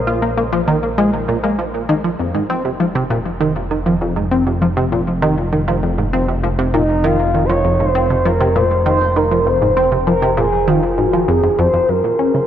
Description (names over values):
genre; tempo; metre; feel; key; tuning
ambient, sequencer-driven space music; 99 BPM; 4/4; straight; unclear; A4 = 436 Hz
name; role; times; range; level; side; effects
expressive synth lead; melody; 0.0-0.4, 6.7-12.5 s; Eb4 to Db5; -17 LUFS; equal; wide subtle chorus, tape echo
fat analog bass; bass; 0.0-12.5 s; F1 to Bb1; -21 LUFS; equal; none
tight sequenced synth; riff; 0.1-12.4 s; F2 to F4; -16 LUFS; equal; chorus, tape echo
pulsing gated texture; texture; 11.9-12.5 s; C6; -42 LUFS; equal; none
room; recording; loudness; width
wet huge ambient reverb, RT60 8.0 s; none; -14 LUFS; side -10 dB against mid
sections
0.0-11.9 A section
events
none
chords
0.0 Bb5; 2.2 F5; 11.9 Gb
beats
0.38 0.98 1.59 | 2.19 2.80 3.41 4.01 | 4.62 5.22 5.83 6.44 | 7.04 7.65 8.25 8.86 | 9.47 10.07 10.68 11.29 | 11.89